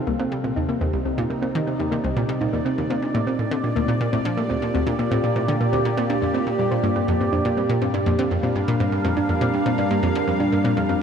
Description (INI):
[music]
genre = ambient, sequencer-driven space music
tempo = 122 BPM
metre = 4/4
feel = straight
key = unclear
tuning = A4 = 440 Hz
[part]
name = evolving wavetable pad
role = sustained chords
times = 0.0-11.0 s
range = Bb2 to F5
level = -23 LUFS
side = equal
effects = phaser, built-in reverb
[part]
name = thumb-piano-like synth pluck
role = arpeggios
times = 0.0-11.0 s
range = G3 to C5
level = -26 LUFS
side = moving between left 4 dB and right 2 dB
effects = chorus, auto-pan, tape echo
[part]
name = analog pluck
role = riff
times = 0.1-11.0 s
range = C2 to G3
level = -24 LUFS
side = right 1 dB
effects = chorus, tape echo
[sound]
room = wet huge ambient reverb, RT60 7.6 s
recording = none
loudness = -20 LUFS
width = side -7 dB against mid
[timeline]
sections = 0.0-11.0 A section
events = none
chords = 0.0 Cmadd9; 2.9 Bb6; 6.8 Gm7